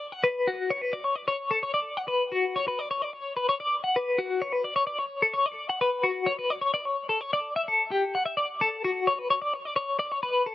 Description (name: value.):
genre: rock.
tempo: 129 BPM.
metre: 4/4.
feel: straight.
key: D major.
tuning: A4 = 441 Hz.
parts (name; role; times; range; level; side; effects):
twelve-string electric guitar; solo; 0.0-10.5 s; F#4 to F#5; -25 LUFS; left 2 dB; tremolo.
room: little or no reverb.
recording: recorded outdoors, with no room sound.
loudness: -25 LUFS.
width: side -14 dB against mid.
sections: 0.0-8.1 A section; 8.1-10.5 B section.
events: none.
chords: none.